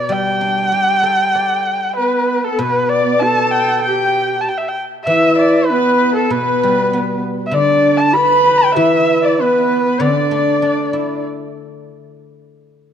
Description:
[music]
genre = chinese traditional, Chinese chamber ensemble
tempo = 97 BPM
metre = 4/4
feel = rubato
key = unclear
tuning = A4 = 437 Hz
[part]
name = dark erhu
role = melody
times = 0.0-11.2 s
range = A4 to B5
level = -16 LUFS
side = equal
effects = none
[part]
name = guzheng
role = accompaniment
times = 0.0-12.2 s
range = B2 to D5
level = -20 LUFS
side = left 1 dB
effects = none
[part]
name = bright reedy dizi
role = second line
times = 2.0-11.2 s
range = A4 to B5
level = -19 LUFS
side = left 5 dB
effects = none
[part]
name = warm horsehead fiddle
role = second line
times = 2.0-11.2 s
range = B3 to B4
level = -19 LUFS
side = right 3 dB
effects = none
[sound]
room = moderate scoring stage reverb, RT60 2.2 s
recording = dark, warm production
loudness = -12 LUFS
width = side -8 dB against mid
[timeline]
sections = 0.0-2.6 A section; 2.6-12.9 B section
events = none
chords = none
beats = | 0.09 0.71 1.33 1.96 | 2.60 3.22 3.85 4.46 | 5.08 5.70 6.32 6.93 | 7.54 8.15 8.77 9.39 | 10.00 10.62 11.24 11.88

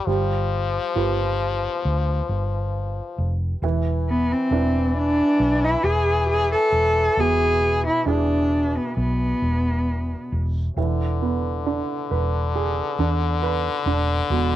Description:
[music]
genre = acoustic folk-pop ballad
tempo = 68 BPM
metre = 4/4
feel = straight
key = unclear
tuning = A4 = 438 Hz
[part]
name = French horn with straight mute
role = second line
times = 0.0-14.6 s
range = D3 to F3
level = -28 LUFS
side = left 7 dB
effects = none
[part]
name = warm baby grand piano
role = accompaniment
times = 0.0-14.6 s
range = B2 to B4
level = -28 LUFS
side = right 8 dB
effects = none
[part]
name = vintage muted fingered electric bass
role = bass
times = 0.1-14.6 s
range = E1 to E2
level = -24 LUFS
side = equal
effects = none
[part]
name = warm cello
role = melody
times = 4.1-10.3 s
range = B3 to A4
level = -20 LUFS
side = equal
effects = cassette tape
[sound]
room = moderate booth ambience, RT60 0.2 s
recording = home recording on cassette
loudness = -20 LUFS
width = side -13 dB against mid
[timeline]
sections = 0.0-10.8 A section; 10.8-14.6 B section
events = none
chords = 0.1 G7; 3.6 E7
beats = | 0.07 0.96 1.85 2.75 | 3.63 4.51 5.40 6.29 | 7.18 8.07 8.97 9.88 | 10.78 11.66 12.54 13.42 | 14.29

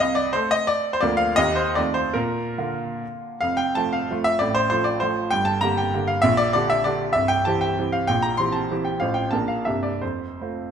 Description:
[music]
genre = classical, romantic triple-time dance for piano with dotted rhythms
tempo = 132-212 BPM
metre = 3/4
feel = rubato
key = Bb major, F major from 3.4 s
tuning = A4 = 440 Hz
[part]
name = clear baby grand piano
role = solo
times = 0.0-10.7 s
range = C1 to C6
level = -20 LUFS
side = equal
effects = none
[sound]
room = wet recital hall reverb, RT60 1.4 s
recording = none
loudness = -20 LUFS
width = side -8 dB against mid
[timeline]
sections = 0.0-3.4 A section; 3.4-10.7 B section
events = none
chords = 0.0 Cm69; 1.0 Bb/D; 1.4 Eb; 1.8 F7; 2.2 Bb; 3.4 F; 4.4 F/A; 5.3 Gm; 6.2 Gm/Bb; 7.1 C; 8.1 C7/Bb; 9.0 F/A; 9.3 Bb; 9.7 C9; 10.0 F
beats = | 0.00 0.34 0.69 | 1.03 1.38 1.77 | 2.15 2.59 3.02 | 3.42 3.76 4.09 | 4.40 4.70 5.02 | 5.32 5.63 5.94 | 6.23 6.55 6.86 | 7.15 7.46 7.79 | 8.10 8.39 8.72 | 9.03 9.34 9.67 | 10.03 10.40

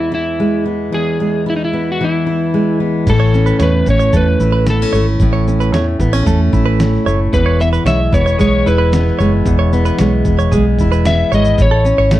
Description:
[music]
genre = acoustic pop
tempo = 113 BPM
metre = 4/4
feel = straight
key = unclear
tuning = A4 = 440 Hz
[part]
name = electric slide guitar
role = melody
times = 0.0-12.1 s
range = D#4 to E5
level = -17 LUFS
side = left 1 dB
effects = plate reverb
[part]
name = fingerpicked steel-string acoustic guitar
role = accompaniment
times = 0.0-12.2 s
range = E2 to E4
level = -16 LUFS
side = left 1 dB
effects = none
[part]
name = vintage muted fingered electric bass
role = bass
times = 3.1-12.2 s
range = E1 to E2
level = -14 LUFS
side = equal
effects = none
[part]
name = dusty soul sampler-style drum kit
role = drums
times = 3.1-12.2 s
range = crash cymbal, kick drum, shaker, snare drum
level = -19 LUFS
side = equal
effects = overdrive
[part]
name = direct-recorded clean electric guitar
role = arpeggios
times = 3.2-12.2 s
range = G#4 to C#5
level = -22 LUFS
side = right 5 dB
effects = none
[sound]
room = light reverb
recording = dark, warm production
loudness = -11 LUFS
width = side -14 dB against mid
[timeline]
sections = 0.0-3.1 A section; 3.1-11.6 B section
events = none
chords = 0.0 E; 3.1 A; 7.3 E; 11.6 A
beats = 0.40 | 0.94 1.47 2.00 2.54 | 3.07 3.60 4.14 4.67 | 5.20 5.74 6.27 6.80 | 7.33 7.87 8.40 8.93 | 9.46 9.99 10.52 11.05 | 11.59 12.12

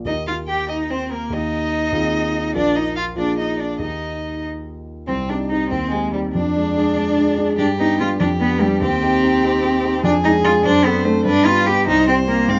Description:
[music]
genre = quick classical-period movement for piano trio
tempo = 97 BPM (dotted quarters)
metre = 6/8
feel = straight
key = Eb major, C minor from 5.1 s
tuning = A4 = 440 Hz
[part]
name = warm concert grand piano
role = accompaniment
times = 0.0-12.6 s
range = Bb1 to Bb4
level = -23 LUFS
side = equal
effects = none
[part]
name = rich violin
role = melody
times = 0.1-12.6 s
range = G3 to G5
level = -27 LUFS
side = equal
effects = none
[part]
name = rich cello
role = second line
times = 0.1-12.6 s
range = G3 to G4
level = -22 LUFS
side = equal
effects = none
[sound]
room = moderate studio reverb, RT60 0.7 s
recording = nothing above 7.6 kHz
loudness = -19 LUFS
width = mono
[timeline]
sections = 0.0-5.1 A section; 5.1-12.6 B section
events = none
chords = 0.1 Eb; 1.9 Fm/Eb; 2.5 Bb5; 3.8 Eb; 5.1 Cm; 5.7 Cm/Eb; 6.3 Ddim/F; 7.6 G; 8.2 G7/F; 8.8 Cm/Eb; 10.0 Ddim/F; 10.7 D7/F#; 11.3 G; 11.9 C5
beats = | 0.07 0.69 | 1.32 1.94 | 2.55 3.17 | 3.81 4.45 | 5.09 5.71 | 6.34 6.96 | 7.58 8.19 | 8.82 9.43 | 10.04 10.65 | 11.25 11.87 | 12.49

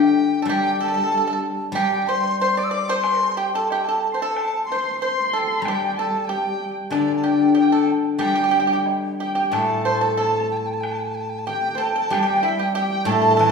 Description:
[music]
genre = chinese traditional, Chinese chamber ensemble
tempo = 93 BPM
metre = 2/4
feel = rubato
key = G zhi mode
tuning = A4 = 439 Hz
[part]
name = bright large dizi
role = melody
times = 0.0-13.5 s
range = D5 to E6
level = -25 LUFS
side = left 1 dB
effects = none
[part]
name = pipa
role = second line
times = 0.0-13.5 s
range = D4 to D5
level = -24 LUFS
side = right 3 dB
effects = none
[part]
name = steel-string zither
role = accompaniment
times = 0.0-13.5 s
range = A2 to G3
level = -22 LUFS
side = left 4 dB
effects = none
[part]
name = woodblock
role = percussion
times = 0.5-13.5 s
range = none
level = -34 LUFS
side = equal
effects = none
[part]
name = warm horsehead fiddle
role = second line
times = 4.7-13.5 s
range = D5 to C6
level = -26 LUFS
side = equal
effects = none
[sound]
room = wet recital hall reverb, RT60 1.7 s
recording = heard from further back in the room, small room ambience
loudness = -18 LUFS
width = side -5 dB against mid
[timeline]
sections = 0.0-9.5 A section; 9.5-13.5 B section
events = none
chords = none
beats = | 0.47 1.11 | 1.74 2.38 | 3.03 3.69 | 4.35 5.00 | 5.64 6.28 | 6.92 7.56 | 8.21 8.87 | 9.54 10.19 | 10.85 11.49 | 12.13 12.77 | 13.40

